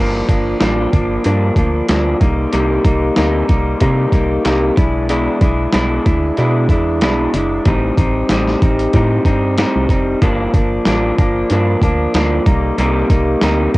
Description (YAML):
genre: indie pop, bedroom pop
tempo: 94 BPM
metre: 4/4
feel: swing 55% on 16ths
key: G minor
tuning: A4 = 441 Hz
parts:
  - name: electric guitar through a small old amp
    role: accompaniment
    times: 0.0-13.8 s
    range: G2 to E4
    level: -16 LUFS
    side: equal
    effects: wide subtle chorus, warbly pitch drift, cassette tape
  - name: organ-like FM bass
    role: bass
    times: 0.0-13.8 s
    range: F1 to C3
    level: -18 LUFS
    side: equal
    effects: none
  - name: dusty soul sampler-style drum kit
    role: drums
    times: 0.3-13.8 s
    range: hi-hat, kick drum, snare drum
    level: -16 LUFS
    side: equal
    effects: overdrive, vintage 12-bit sampler grit, cassette tape
room: little or no reverb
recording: home recording on cassette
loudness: -12 LUFS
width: side -20 dB against mid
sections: 0.0-13.8 A section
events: none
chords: 0.0 Gm7; 2.2 Cm7; 4.8 E7/B; 7.7 Am7b5; 10.2 Gm7; 12.5 Cm7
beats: 0.61 1.25 1.89 | 2.53 3.17 3.81 4.45 | 5.09 5.74 6.38 7.02 | 7.66 8.30 8.94 9.58 | 10.22 10.86 11.50 12.14 | 12.78 13.42